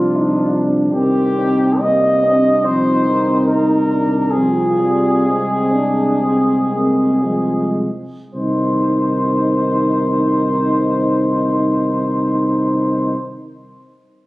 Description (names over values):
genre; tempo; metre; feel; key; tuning
classical, hymn-like piece for brass band; 51-78 BPM; 4/4; rubato; C minor; A4 = 440 Hz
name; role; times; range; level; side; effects
mellow cornet; melody; 0.0-13.1 s; F4 to Eb5; -19 LUFS; left 1 dB; none
mellow French horn section; second line; 0.0-13.1 s; Ab3 to C5; -22 LUFS; right 1 dB; none
bright trombone section; accompaniment; 0.0-13.1 s; Ab3 to Eb4; -20 LUFS; equal; none
mellow trombone; accompaniment; 0.0-13.1 s; Eb3 to Ab3; -23 LUFS; right 1 dB; none
dark tuba; bass; 0.0-13.1 s; C2; -20 LUFS; equal; none
room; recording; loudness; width
moderate concert hall reverb, RT60 2.0 s; recorded on a phone in the room, club reverb, compression; -14 LUFS; side -19 dB against mid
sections
0.0-8.3 A section; 8.3-12.6 B section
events
slowing down 0.0-8.3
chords
0.0 G7(no3)/C (rootless); 0.9 Cm; 4.3 Fm/C; 8.3 Cm